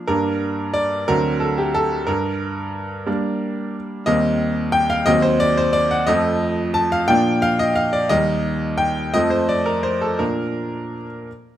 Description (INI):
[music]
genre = classical-period piano sonatina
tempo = 60 BPM (dotted quarters)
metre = 6/8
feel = rubato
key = Bb major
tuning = A4 = 441 Hz
[part]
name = bright baby grand piano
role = solo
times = 0.0-11.3 s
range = D2 to A5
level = -18 LUFS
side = equal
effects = none
[sound]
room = light reverb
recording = close, detailed microphones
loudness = -17 LUFS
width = side -12 dB against mid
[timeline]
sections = 0.0-11.6 A section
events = none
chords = 0.1 Gm; 1.1 D7; 2.1 Gm; 4.1 Cm7/Eb; 5.1 Cm7b5/Eb; 6.1 F7; 7.1 Bb; 8.1 Eb; 9.1 F; 10.2 Bb